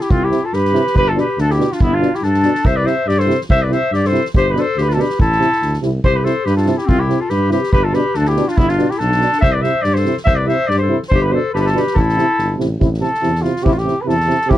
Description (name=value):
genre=balkan folk, Balkan brass band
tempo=142 BPM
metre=2/4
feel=swing 54% on 16ths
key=unclear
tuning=A4 = 441 Hz
part: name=mellow flugelhorn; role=melody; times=0.0-14.6 s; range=E4 to E5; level=-18 LUFS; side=equal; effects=none
part: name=clear clarinet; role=second line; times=0.0-12.6 s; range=B3 to C5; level=-21 LUFS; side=left 5 dB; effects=none
part: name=soft-mallet drum kit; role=percussion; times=0.0-14.6 s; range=kick drum, snare drum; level=-20 LUFS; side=equal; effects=none
part: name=mellow tuba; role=bass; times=0.1-14.6 s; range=G1 to G2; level=-19 LUFS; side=equal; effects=none
part: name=dark euphonium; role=accompaniment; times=0.3-14.6 s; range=B2 to C3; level=-21 LUFS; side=right 7 dB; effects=none
part: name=warm French horn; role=accompaniment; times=0.3-14.6 s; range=D4 to E4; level=-22 LUFS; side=left 4 dB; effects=none
room=little or no reverb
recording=dry, close 1970s-style studio recording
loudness=-13 LUFS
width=side -13 dB against mid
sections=0.0-6.0 A section; 6.0-12.8 A section; 12.8-14.6 B section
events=flugelhorn solo 12.8-14.6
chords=0.0 C; 0.9 G; 2.6 C; 4.3 G; 5.2 Am; 6.0 C; 7.7 G; 9.4 C; 11.1 G; 12.0 Am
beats=| 0.10 0.52 | 0.94 1.37 | 1.79 2.22 | 2.64 3.07 | 3.49 3.91 | 4.34 4.76 | 5.18 5.61 | 6.03 6.46 | 6.88 7.30 | 7.73 8.15 | 8.57 8.99 | 9.42 9.84 | 10.26 10.69 | 11.11 11.54 | 11.96 12.38 | 12.81 13.23 | 13.66 14.08 | 14.51